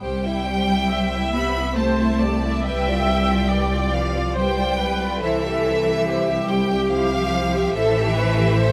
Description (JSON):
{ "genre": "classical, slow romantic movement for string orchestra", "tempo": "70 BPM", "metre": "3/4", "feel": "rubato", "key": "C major", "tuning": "A4 = 442 Hz", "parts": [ { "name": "rich symphonic violin section", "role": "melody", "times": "0.0-8.7 s", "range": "E5 to B5", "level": "-28 LUFS", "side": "equal", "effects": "none" }, { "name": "rich symphonic violin section", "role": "second line", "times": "0.0-8.7 s", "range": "E4 to E5", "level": "-30 LUFS", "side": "equal", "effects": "none" }, { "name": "rich studio double bass section", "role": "bass", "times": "0.0-8.7 s", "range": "A1 to C2", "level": "-27 LUFS", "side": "equal", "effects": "none" }, { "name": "rich symphonic cello section", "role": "bass", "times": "0.0-8.7 s", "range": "E3 to B3", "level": "-27 LUFS", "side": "equal", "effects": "none" }, { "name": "clear symphonic viola section", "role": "accompaniment", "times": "0.9-8.7 s", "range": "G4 to E5", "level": "-27 LUFS", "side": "equal", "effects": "none" } ], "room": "light reverb", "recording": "close, detailed microphones", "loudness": "-21 LUFS", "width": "mono", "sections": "0.0-8.7 A section", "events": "none", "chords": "0.0 C; 2.6 G7/C; 5.2 C; 7.7 Am7", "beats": "| 0.01 0.90 1.77 | 2.64 3.50 4.35 | 5.21 6.05 6.89 | 7.73 8.57" }